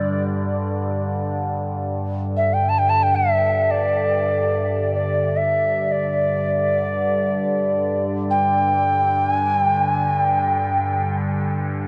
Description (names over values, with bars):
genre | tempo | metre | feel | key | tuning
world meditative, free-time meditation music | free time | none | none | unclear | A4 = 438 Hz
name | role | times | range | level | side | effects
mellow Native American-style cedar flute | melody | 0.0-11.2 s | D5 to A5 | -22 LUFS | equal | diffuse ambient delay
overtone-sweeping drone | drone | 0.0-11.9 s | G2 to D3 | -26 LUFS | equal | chorus, built-in reverb, phaser
room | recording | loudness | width
wet huge ambient reverb, RT60 7.0 s | worn, warbling old tape, cassette tape, warbly pitch drift | -20 LUFS | mono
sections
0.0-11.9 A section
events
none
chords
none